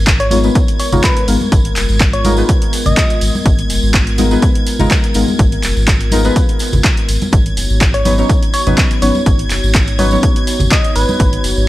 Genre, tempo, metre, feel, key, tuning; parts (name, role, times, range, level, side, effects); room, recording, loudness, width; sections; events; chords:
deep house; 124 BPM; 4/4; swing 54% on 16ths; G# dorian; A4 = 444 Hz
dark analog pad; sustained chords; 0.0-11.7 s; G#3 to C#5; -24 LUFS; left 1 dB; chorus, sidechain pumping
warm sub bass; bass; 0.0-11.7 s; E#1 to G#1; -16 LUFS; equal; tube saturation, sidechain pumping
rich studio violin section; texture; 0.0-11.7 s; G#6; -27 LUFS; equal; sidechain pumping
electronic kick drum; drums; 0.1-11.3 s; -14 LUFS; equal
punchy analog drum machine; drums; 0.1-11.5 s; handclaps, hi-hat; -20 LUFS; equal
tambourine; percussion; 0.1-11.7 s; -27 LUFS; right 1 dB
soft struck synth lead; melody; 0.2-3.3, 7.9-11.4 s; B4 to D#5; -20 LUFS; left 1 dB; chorus, tremolo, analog delay
deep mellow chord stab; stabs; 0.3-10.2 s; F#3 to C#5; -18 LUFS; left 2 dB; chorus, sidechain pumping, tape echo
congas; percussion; 0.3-11.2 s; -22 LUFS; right 2 dB
digital ambience; -11 LUFS; side -16 dB against mid
0.0-11.7 A section
0.0 G#m69; 7.3 Badd9